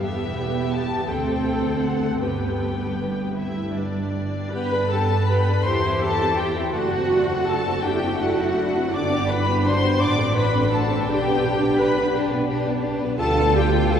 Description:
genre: classical, slow romantic movement for string orchestra.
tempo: 51-58 BPM (dotted quarters).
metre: 6/8.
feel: rubato.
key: G major.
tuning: A4 = 440 Hz.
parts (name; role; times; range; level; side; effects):
rich symphonic violin section; melody; 0.0-14.0 s; D5 to D6; -27 LUFS; left 4 dB; none.
rich symphonic violin section; second line; 0.0-14.0 s; G3 to B4; -28 LUFS; left 3 dB; none.
rich studio viola section; accompaniment; 0.0-14.0 s; B3 to D5; -24 LUFS; right 1 dB; none.
rich symphonic cello section; bass; 0.0-14.0 s; D2 to G4; -27 LUFS; right 1 dB; none.
rich symphonic double bass section; bass; 0.0-14.0 s; E1 to G2; -26 LUFS; right 2 dB; none.
room: wet cathedral reverb, RT60 5.5 s.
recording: heard from further back in the room.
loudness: -19 LUFS.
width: side -8 dB against mid.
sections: 0.0-4.5 A section; 4.5-14.0 B section.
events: none.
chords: 0.0 Em; 1.1 D5; 2.2 G; 5.6 C/E; 6.7 D7/F#; 8.9 G; 10.0 D7/A; 11.1 G/B; 13.2 G7/D.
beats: | 0.02 1.09 | 2.21 3.37 | 4.52 5.64 | 6.74 7.84 | 8.93 10.00 | 11.06 12.12 | 13.20.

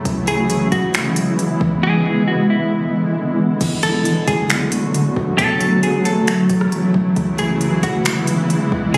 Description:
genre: hip hop, atmospheric cloud-rap.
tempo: 135 BPM.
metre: 4/4.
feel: half-time.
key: unclear.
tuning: A4 = 440 Hz.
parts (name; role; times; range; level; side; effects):
granular cloud pad; sustained chords; 0.0-9.0 s; C#3 to F#4; -19 LUFS; equal; built-in reverb, sidechain pumping.
soft 808-style bass; bass; 0.0-9.0 s; E1 to C#2; -34 LUFS; equal; none.
smooth R&B drum kit; drums; 0.1-9.0 s; crash cymbal, finger snaps, hi-hat, kick drum, rim click; -24 LUFS; equal; overdrive.
clean electric guitar; melody; 0.3-9.0 s; E4 to A4; -24 LUFS; equal; tape echo.
room: light reverb, digital ambience.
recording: recorded on a phone in the room, studio reverb.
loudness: -17 LUFS.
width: mono.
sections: 0.0-3.6 A section; 3.6-9.0 B section.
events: none.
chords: 0.1 C#m7; 1.8 E7; 3.6 Bm7; 5.4 F#m7; 7.2 C#m7.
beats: | 0.05 0.50 0.94 1.39 | 1.83 2.27 2.72 3.16 | 3.61 4.05 4.50 4.94 | 5.39 5.83 6.28 6.72 | 7.16 7.61 8.05 8.50 | 8.94.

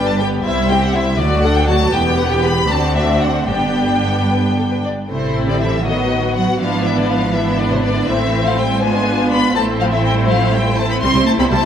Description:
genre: quick classical-period movement for string orchestra.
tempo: 81 BPM (dotted quarters).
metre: 6/8.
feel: rubato.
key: G major, A minor from 5.1 s.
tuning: A4 = 445 Hz.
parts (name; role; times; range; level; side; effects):
rich studio violin section; melody; 0.0-11.7 s; C5 to C6; -20 LUFS; left 4 dB; none.
warm symphonic violin section; second line; 0.0-11.7 s; E4 to F#5; -21 LUFS; left 3 dB; none.
clear symphonic viola section; accompaniment; 0.0-11.7 s; F#3 to G4; -20 LUFS; right 1 dB; none.
rich symphonic cello section; bass; 0.0-11.7 s; C2 to C4; -21 LUFS; right 2 dB; none.
rich symphonic double bass section; bass; 0.0-11.7 s; E1 to D2; -21 LUFS; right 2 dB; none.
room: wet scoring stage reverb, RT60 1.9 s.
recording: none.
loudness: -14 LUFS.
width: side -9 dB against mid.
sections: 0.0-5.1 A section; 5.1-11.7 B section.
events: none.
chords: 0.5 C; 1.2 D; 1.9 Em; 2.7 D7; 3.5 G; 5.1 Am; 5.9 B7/A; 6.6 E7/G#; 8.1 Am; 8.8 G#dim7; 9.6 Am; 11.0 C.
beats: | 0.45 1.20 | 1.93 2.69 | 3.48 4.30 | 5.10 5.86 | 6.60 7.34 | 8.08 8.83 | 9.56 10.29 | 11.02.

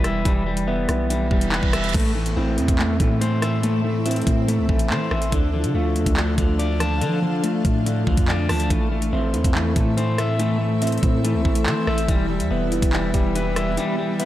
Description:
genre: hip hop, drill.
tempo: 142 BPM.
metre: 4/4.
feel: half-time.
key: A minor.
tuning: A4 = 441 Hz.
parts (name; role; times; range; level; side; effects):
dark concert grand piano; accompaniment; 0.0-14.3 s; A2 to E5; -26 LUFS; equal; none.
electric guitar at the edge of break-up; arpeggios; 0.0-14.3 s; D3 to A5; -24 LUFS; left 2 dB; tape echo.
long sustained 808-style bass; bass; 0.0-13.8 s; E1 to F3; -24 LUFS; equal; none.
drill drum kit; drums; 0.0-14.3 s; crash cymbal, handclaps, hi-hat, kick drum, rim click; -23 LUFS; equal; none.
reverse cymbal and downlifter; sound effects; 1.3-5.3 s; none; -33 LUFS; right 3 dB; none.
granular cloud pad; sustained chords; 2.9-14.3 s; B3 to F5; -31 LUFS; right 2 dB; built-in reverb.
room: light reverb.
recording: dark, warm production.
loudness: -18 LUFS.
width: side -14 dB against mid.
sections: 0.0-1.9 A section; 1.9-14.3 B section.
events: reverse cymbal 1.3-1.9; kick muted 13.8-14.3.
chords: 0.0 Em; 1.9 Am; 5.3 Dm; 8.7 Am; 12.1 Em.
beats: | 0.25 0.68 1.10 1.52 | 1.94 2.37 2.79 3.21 | 3.63 4.06 4.48 4.90 | 5.32 5.75 6.17 6.59 | 7.01 7.44 7.86 8.28 | 8.70 9.13 9.55 9.97 | 10.39 10.82 11.24 11.66 | 12.08 12.51 12.93 13.35 | 13.78 14.20.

